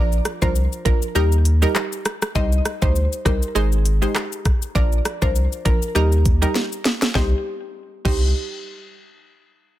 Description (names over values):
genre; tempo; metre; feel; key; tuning
dancehall; 100 BPM; 4/4; swing 56% on 16ths; C minor; A4 = 440 Hz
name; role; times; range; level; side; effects
mallet-like synth pluck; melody; 0.0-8.3 s; G4 to Eb5; -27 LUFS; equal; chorus, tape echo
analog pluck; accompaniment; 0.0-8.3 s; F3 to C5; -27 LUFS; right 2 dB; chorus
warm sub bass; bass; 0.0-8.3 s; Ab1 to Eb2; -19 LUFS; equal; none
island pop drum kit; drums; 0.1-8.2 s; crash cymbal, handclaps, hi-hat, kick drum, rim click, shaker, snare drum; -21 LUFS; equal; soft clipping on snare
room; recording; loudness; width
little or no reverb; dense, heavily limited modern master; -17 LUFS; side -14 dB against mid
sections
0.0-7.2 A section; 7.2-9.6 B section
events
drum fill 6.6-7.2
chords
0.0 Bb; 1.2 Eb; 2.4 Cm; 3.6 Ab; 4.8 Bb; 6.0 Eb; 7.2 Cm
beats
0.55 1.15 1.75 | 2.35 2.95 3.55 4.15 | 4.75 5.35 5.95 6.55 | 7.15 7.75